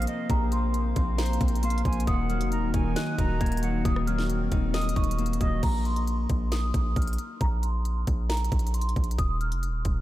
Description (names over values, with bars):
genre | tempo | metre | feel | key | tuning
hip hop, trap | 135 BPM | 4/4 | half-time | unclear | A4 = 440 Hz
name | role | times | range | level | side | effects
large celesta | melody | 0.0-10.0 s | Bb5 to Ab6 | -34 LUFS | right 1 dB | analog chorus, tape echo
reedy silver concert flute | second line | 0.0-5.6 s | Eb5 to Bb5 | -39 LUFS | right 5 dB | tape echo
Celtic harp | accompaniment | 0.0-8.4 s | C3 to Eb5 | -32 LUFS | left 6 dB | none
hollow soft pad | sustained chords | 0.0-5.6 s | Eb3 to F5 | -36 LUFS | right 1 dB | chorus
hard-hitting 808-style bass | bass | 0.0-10.0 s | Eb1 to Bb1 | -27 LUFS | equal | none
trap drum kit | drums | 0.0-10.0 s | crash cymbal, hi-hat, kick drum, rim click, snare drum | -29 LUFS | equal | none
room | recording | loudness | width
light reverb, studio reverb | none | -24 LUFS | side -15 dB against mid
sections
0.0-5.6 A section; 5.6-10.0 B section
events
none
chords
0.0 Bbsus2; 2.1 Ebm; 5.6 Bbsus2; 9.2 N.C.